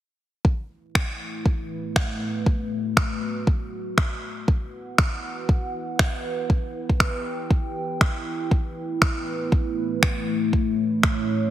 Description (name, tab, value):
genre	afro house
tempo	119 BPM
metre	4/4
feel	swing 58% on 16ths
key	unclear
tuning	A4 = 440 Hz
part	dark analog pad	sustained chords	1.2-11.5 s	A3 to G5	-28 LUFS	equal	chorus, phaser, sidechain pumping
part	electronic kick drum	drums	0.4-11.2 s	none	-21 LUFS	equal	small room ambience
part	electronic finger snaps	drums	1.0-11.2 s	none	-25 LUFS	equal	small room ambience
room	light reverb, digital ambience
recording	heavily compressed radio sound, multiband compression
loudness	-22 LUFS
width	side -12 dB against mid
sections	0.4-11.5 A section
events	filter sweep on analog synth pad 0.4-11.5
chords	0.4 A5; 4.5 Em; 8.5 A